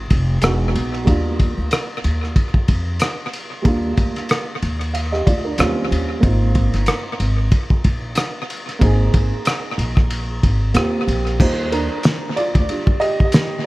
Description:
hip hop, jazz-hop; 93 BPM; 4/4; swing 57% on 16ths; Eb major; A4 = 441 Hz
dark upright piano; accompaniment; 0.0-13.7 s; Gb3 to F5; -23 LUFS; right 2 dB; tape echo
upright bass; bass; 0.0-12.7 s; E1 to F2; -20 LUFS; equal
cloth-damped thuddy drum kit; drums; 0.1-13.5 s; crash cymbal, hi-hat, kick drum, ride cymbal, rim click, snare drum; -18 LUFS; equal; tape echo
small room reverb; echo-heavy mix, vinyl crackle; -16 LUFS; side -19 dB against mid
0.0-11.4 A section; 11.4-13.7 B section
upright piano solo 11.4-13.7
0.4 Emaj7; 1.1 Ebmaj7; 5.6 Eb13; 6.2 Ab69; 10.8 Eb69; 11.4 Ebmaj7
0.43 | 1.07 1.72 2.36 3.01 | 3.65 4.30 4.94 5.59 | 6.23 6.88 7.52 8.17 | 8.81 9.46 10.11 10.75 | 11.39 12.04 12.69 13.33

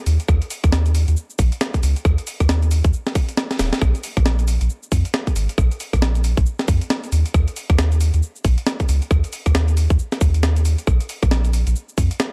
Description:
UK garage, two-step garage; 136 BPM; 4/4; swing 60% on 16ths; A4 = 440 Hz
soft dub sub bass; bass; 0.1-12.1 s; Eb1 to F2; -20 LUFS; equal
breakbeat sampler-style drum kit; drums; 0.1-12.3 s; cabasa, hi-hat, rim click, snare drum; -27 LUFS; equal
electronic kick drum; drums; 0.3-12.1 s; -21 LUFS; equal
little or no reverb; dry, gritty hardware recording; -19 LUFS; mono
0.0-12.3 A section
kick drops out 3.4-3.8; drum fill 3.5-3.8
| 0.29 0.73 1.17 1.61 | 2.05 2.49 2.93 3.37 | 3.81 4.26 4.70 5.14 | 5.58 6.02 6.46 6.90 | 7.34 7.79 8.23 8.67 | 9.11 9.55 9.99 10.43 | 10.87 11.31 11.76 12.20

